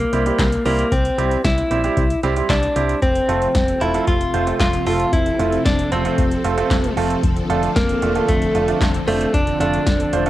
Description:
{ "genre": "synth-pop", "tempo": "114 BPM", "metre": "4/4", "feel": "straight", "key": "unclear", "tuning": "A4 = 440 Hz", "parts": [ { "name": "direct-recorded clean electric guitar", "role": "melody", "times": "0.0-10.3 s", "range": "A3 to F4", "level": "-20 LUFS", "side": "left 1 dB", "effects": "cassette tape" }, { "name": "solid FM bass", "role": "bass", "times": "0.0-10.3 s", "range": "E1 to C2", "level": "-24 LUFS", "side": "left 1 dB", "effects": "none" }, { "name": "electro analog drum machine", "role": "drums", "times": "0.0-10.3 s", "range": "handclaps, hi-hat, kick drum, snare drum", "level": "-21 LUFS", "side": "left 1 dB", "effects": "overdrive, cassette tape" }, { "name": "clear baby grand piano", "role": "accompaniment", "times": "0.1-10.3 s", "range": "G3 to C5", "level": "-23 LUFS", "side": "right 6 dB", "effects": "cassette tape" }, { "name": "string machine, violas", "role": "sustained chords", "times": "3.0-10.3 s", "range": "C3 to A4", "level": "-24 LUFS", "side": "left 1 dB", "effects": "ensemble chorus, cassette tape" } ], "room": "moderate spring reverb, RT60 1.3 s, digital ambience", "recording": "home recording on cassette", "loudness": "-16 LUFS", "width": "side -14 dB against mid", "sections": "0.0-10.3 A section", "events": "none", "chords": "0.0 C; 3.0 F; 7.2 Dm", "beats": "0.39 | 0.92 1.45 1.97 2.50 | 3.02 3.55 4.08 4.60 | 5.13 5.66 6.18 6.71 | 7.23 7.76 8.29 8.81 | 9.34 9.87" }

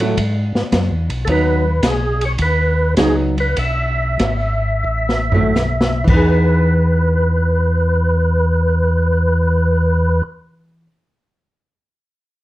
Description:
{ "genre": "soul jazz organ trio", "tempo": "76-109 BPM", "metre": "4/4", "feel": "swing 69% on 8ths", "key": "E major", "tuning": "A4 = 441 Hz", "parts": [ { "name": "archtop guitar, miked and amplified", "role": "accompaniment", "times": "0.0-11.0 s", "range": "E3 to G#4", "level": "-20 LUFS", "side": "right 1 dB", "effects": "none" }, { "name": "mellow tonewheel organ", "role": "bass", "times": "0.0-10.2 s", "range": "G#1 to A2", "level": "-17 LUFS", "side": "equal", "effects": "slow rotary speaker" }, { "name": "open jazz drum kit", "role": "drums", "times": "0.0-6.2 s", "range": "crash cymbal, hi-hat, kick drum, ride cymbal, snare drum, toms", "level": "-20 LUFS", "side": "equal", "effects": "none" }, { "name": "percussive tonewheel organ", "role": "melody", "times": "1.2-10.2 s", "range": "G#4 to E5", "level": "-19 LUFS", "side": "equal", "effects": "slow rotary speaker, overdrive, chorus vibrato" } ], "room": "moderate studio reverb, RT60 0.6 s", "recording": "worn, warbling old tape, cassette tape, warbly pitch drift", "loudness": "-14 LUFS", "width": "side -16 dB against mid", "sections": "0.0-6.3 A section; 6.3-9.5 B section", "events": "slowing down 1.3-6.3; drum fill 4.9-6.3", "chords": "0.0 B7sus4; 1.3 B69; 3.6 B7sus4; 5.9 Emaj7", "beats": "0.17 0.72 | 1.28 1.83 2.39 2.97 | 3.57 4.20 4.86 5.56 | 6.32 7.10 7.89 8.68" }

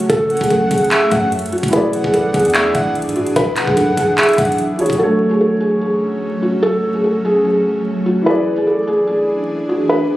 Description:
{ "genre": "hip hop, trap", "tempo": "147 BPM", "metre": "4/4", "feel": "half-time", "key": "F# minor", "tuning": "A4 = 441 Hz", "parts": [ { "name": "felt-muted upright piano", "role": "melody", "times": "0.0-10.2 s", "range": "F#4 to B4", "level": "-16 LUFS", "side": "equal", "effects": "low-pass filter, tape echo" }, { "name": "dark grand piano", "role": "accompaniment", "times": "0.0-10.2 s", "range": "E3 to D5", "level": "-21 LUFS", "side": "equal", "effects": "low-pass filter" }, { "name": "ethereal airy pad", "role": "sustained chords", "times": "0.0-10.2 s", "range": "E3 to G#4", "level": "-22 LUFS", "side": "right 1 dB", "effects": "ensemble chorus, built-in reverb" }, { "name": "warm 808-style bass", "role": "bass", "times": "0.0-5.0 s", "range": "E1 to G#2", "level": "-25 LUFS", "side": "equal", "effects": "none" }, { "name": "trap drum kit", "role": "drums", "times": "0.0-5.0 s", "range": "handclaps, hi-hat, kick drum", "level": "-20 LUFS", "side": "equal", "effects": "none" }, { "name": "breathy flute-like synth lead", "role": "second line", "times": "0.3-4.6 s", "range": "E5 to F#5", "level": "-21 LUFS", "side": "right 1 dB", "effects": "chorus, tape echo" } ], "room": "light reverb", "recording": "recorded on a phone in the room, club reverb, vinyl crackle, compression", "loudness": "-13 LUFS", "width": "side -15 dB against mid", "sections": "0.0-5.0 A section; 5.0-10.2 A section", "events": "none", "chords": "0.0 F#m; 1.7 E7; 5.0 F#m; 8.3 E7", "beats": "| 0.10 0.51 0.91 1.32 | 1.73 2.14 2.54 2.95 | 3.36 3.77 4.18 4.59 | 4.99 5.40 5.81 6.22 | 6.63 7.04 7.44 7.85 | 8.26 8.67 9.08 9.48 | 9.89" }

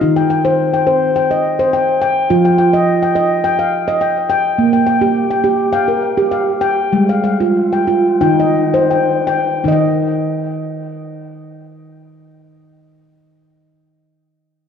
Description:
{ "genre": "world meditative, meditative tuned percussion", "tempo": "79-106 BPM", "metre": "4/4", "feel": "swing 53% on 16ths", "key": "Eb major", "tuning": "A4 = 441 Hz", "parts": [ { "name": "handpan", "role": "solo", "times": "0.0-14.0 s", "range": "Eb3 to G5", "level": "-12 LUFS", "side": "equal", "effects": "diffuse ambient delay" } ], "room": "wet scoring stage reverb, RT60 1.8 s, small room reverb", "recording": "worn, warbling old tape, cassette tape, warbly pitch drift", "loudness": "-12 LUFS", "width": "side -7 dB against mid", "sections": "0.0-9.7 A section; 9.7-12.7 B section", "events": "slowing down 4.6-9.7", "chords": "0.0 Eb; 2.3 Ebadd9/F; 4.6 Bb5; 6.9 Fmadd9/G; 8.2 Eb; 9.7 N.C.", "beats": "| 0.03 0.60 1.17 1.73 | 2.30 2.87 3.44 4.01 | 4.58 5.15 5.73 6.32 | 6.93 7.56 8.22 8.91 | 9.65 10.41 11.17 11.93" }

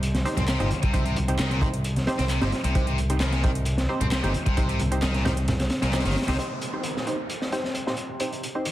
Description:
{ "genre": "breakbeat, breaks", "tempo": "132 BPM", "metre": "4/4", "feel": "straight", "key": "C minor pentatonic", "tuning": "A4 = 440 Hz", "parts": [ { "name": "overdriven picked electric bass", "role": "bass", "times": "0.0-6.4 s", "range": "G1 to C2", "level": "-26 LUFS", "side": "equal", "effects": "none" }, { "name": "crunchy breakbeat drum kit", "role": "drums", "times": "0.0-8.7 s", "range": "hi-hat, kick drum, snare drum", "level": "-27 LUFS", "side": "equal", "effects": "high-pass filter on kick, high-pass filter on hats, high-pass filter on snare, high-pass filter on room" }, { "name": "garage drum kit", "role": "drums", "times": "0.0-6.4 s", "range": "handclaps, hi-hat", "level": "-37 LUFS", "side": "right 1 dB", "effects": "overdrive" }, { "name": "congas", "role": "percussion", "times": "0.1-6.4 s", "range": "none", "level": "-32 LUFS", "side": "right 1 dB", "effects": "none" }, { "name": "filtered dub chord stab", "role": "stabs", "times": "0.3-8.7 s", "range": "C4 to C5", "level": "-31 LUFS", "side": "right 1 dB", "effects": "chorus, tape echo" }, { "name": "tight distorted guitar", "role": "riff", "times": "0.4-8.7 s", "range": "Bb2 to C4", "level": "-32 LUFS", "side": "left 1 dB", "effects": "distortion, low-pass filter, tape echo" }, { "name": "downlifter", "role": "sound effects", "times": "6.4-8.7 s", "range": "none", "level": "-36 LUFS", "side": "equal", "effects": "none" } ], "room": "light reverb, studio ambience", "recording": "dense, heavily limited modern master, vinyl crackle", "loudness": "-22 LUFS", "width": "side -14 dB against mid", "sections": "0.0-6.4 A section; 6.4-8.7 B section", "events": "none", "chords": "0.0 Cm", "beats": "0.03 0.48 | 0.93 1.39 1.84 2.30 | 2.75 3.21 3.66 4.12 | 4.57 5.03 5.48 5.93 | 6.39 6.84 7.30 7.75 | 8.21 8.66" }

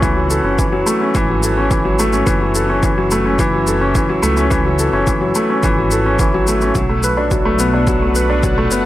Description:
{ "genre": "piano and strings electronica", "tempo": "107 BPM", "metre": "4/4", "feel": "straight", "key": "F# minor", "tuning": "A4 = 440 Hz", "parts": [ { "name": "lush unison pad", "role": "sustained chords", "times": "0.0-8.9 s", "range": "A3 to F#5", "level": "-29 LUFS", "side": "equal", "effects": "chorus, phaser, sidechain pumping" }, { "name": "felt-muted upright piano", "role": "riff", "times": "0.0-8.9 s", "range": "E3 to B4", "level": "-15 LUFS", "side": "left 1 dB", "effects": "low-pass filter, tape echo" }, { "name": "dark detuned saw bass", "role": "bass", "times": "0.0-8.9 s", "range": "F#1 to C#2", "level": "-20 LUFS", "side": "equal", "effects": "sidechain pumping" }, { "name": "electronic kick drum", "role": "drums", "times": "0.0-8.5 s", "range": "none", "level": "-20 LUFS", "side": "equal", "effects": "none" }, { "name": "shaker", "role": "drums", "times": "0.0-8.8 s", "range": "none", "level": "-25 LUFS", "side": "left 3 dB", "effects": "none" } ], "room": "light reverb", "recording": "none", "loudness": "-13 LUFS", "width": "side -14 dB against mid", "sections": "0.0-8.9 A section", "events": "fade-in on analog synth pad 0.0-8.9", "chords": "0.0 F#m7; 6.8 Bm7", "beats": "| 0.03 0.59 1.15 1.71 | 2.27 2.83 3.39 3.95 | 4.51 5.07 5.63 6.20 | 6.76 7.32 7.88 8.44" }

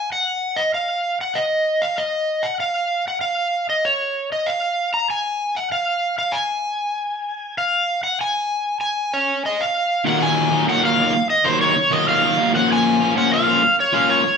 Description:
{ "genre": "rock", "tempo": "97 BPM", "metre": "4/4", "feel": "straight", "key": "Eb minor", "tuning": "A4 = 440 Hz", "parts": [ { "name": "overdriven slide guitar", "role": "melody", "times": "0.0-14.4 s", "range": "C5 to Bb5", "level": "-18 LUFS", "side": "equal", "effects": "none" }, { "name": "crunchy overdriven guitar", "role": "riff", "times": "10.0-14.3 s", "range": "Eb2 to F4", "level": "-18 LUFS", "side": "left 1 dB", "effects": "none" } ], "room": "moderate large studio reverb, RT60 1.1 s", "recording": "band playing live in one room", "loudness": "-17 LUFS", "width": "side -6 dB against mid", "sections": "0.0-10.1 A section; 10.1-14.4 B section", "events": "none", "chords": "0.0 N.C.; 10.1 Ebm; 12.5 Bbm", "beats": "| 0.11 0.73 1.36 1.98 | 2.60 3.22 3.84 4.46 | 5.09 5.71 6.33 6.95 | 7.57 8.20 8.82 9.44 | 10.06 10.68 11.29 11.91 | 12.53 13.15 13.77" }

